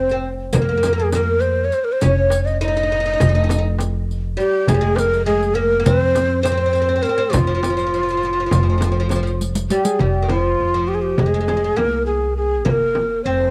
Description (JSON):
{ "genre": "Turkish makam ensemble", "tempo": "203 BPM (eighths)", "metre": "9/8", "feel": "straight", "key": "F makam ussak", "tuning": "A4 = 440 Hz", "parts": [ { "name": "breathy ney", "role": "melody", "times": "0.0-13.5 s", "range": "F4 to Eb5", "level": "-22 LUFS", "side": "equal", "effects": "cassette tape" }, { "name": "oud", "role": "second line", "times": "0.0-13.5 s", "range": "Eb3 to Eb4", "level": "-26 LUFS", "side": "equal", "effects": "cassette tape" }, { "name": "upright bass", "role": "bass", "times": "0.0-13.5 s", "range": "F1 to F2", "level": "-24 LUFS", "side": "equal", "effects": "none" }, { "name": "darbuka", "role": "percussion", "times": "0.1-13.5 s", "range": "none", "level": "-24 LUFS", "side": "equal", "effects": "none" }, { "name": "riq", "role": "percussion", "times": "0.1-10.0 s", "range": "none", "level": "-30 LUFS", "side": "equal", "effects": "none" }, { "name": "frame drum", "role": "percussion", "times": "0.5-13.1 s", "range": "none", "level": "-27 LUFS", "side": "equal", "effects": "none" } ], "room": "light reverb, studio ambience", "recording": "home recording on cassette", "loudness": "-18 LUFS", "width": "mono", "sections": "0.0-10.0 A section; 10.0-13.5 B section", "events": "drum fill 9.4-10.0", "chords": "none" }